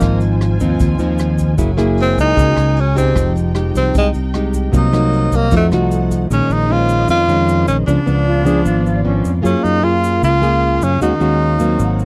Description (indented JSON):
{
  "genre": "bossa nova",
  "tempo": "153 BPM",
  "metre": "4/4",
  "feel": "straight",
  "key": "F minor, Bb minor from 6.3 s",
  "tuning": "A4 = 435 Hz",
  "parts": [
    { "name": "breathy tenor saxophone", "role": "melody", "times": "0.0-12.1 s", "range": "Ab3 to F4", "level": "-19 LUFS", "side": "equal", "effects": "none" },
    { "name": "nylon-string guitar", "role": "accompaniment", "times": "0.0-12.1 s", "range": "F2 to Ab4", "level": "-20 LUFS", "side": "equal", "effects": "none" },
    { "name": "dark studio string section", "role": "sustained chords", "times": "0.0-12.1 s", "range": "Bb3 to Ab5", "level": "-30 LUFS", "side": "equal", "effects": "none" },
    { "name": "fingered electric bass", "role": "bass", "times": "0.0-12.1 s", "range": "F1 to Gb2", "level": "-20 LUFS", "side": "equal", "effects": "none" },
    { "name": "jazz brush drum kit", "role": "drums", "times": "0.0-6.2 s", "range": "hi-hat, kick drum, rim click", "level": "-24 LUFS", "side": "equal", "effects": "none" },
    { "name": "egg shaker", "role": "percussion", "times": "0.0-12.1 s", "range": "none", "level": "-40 LUFS", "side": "equal", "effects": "none" },
    { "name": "bright reedy alto flute", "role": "second line", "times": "8.3-9.3 s", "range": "Db4 to Ab4", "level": "-25 LUFS", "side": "equal", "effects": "none" }
  ],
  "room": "little or no reverb",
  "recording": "dry, close 1970s-style studio recording",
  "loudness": "-15 LUFS",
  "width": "mono",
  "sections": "0.0-6.3 A section; 6.3-12.1 B section",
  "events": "tenor saxophone solo 0.0-6.3",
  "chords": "0.0 Ab6; 1.6 Gb9; 3.2 Fm9; 4.7 Cm7b5; 5.5 F7b9; 6.3 Bbm11; 7.9 Db7b9; 9.4 Gbmaj9; 11.0 Ebm11"
}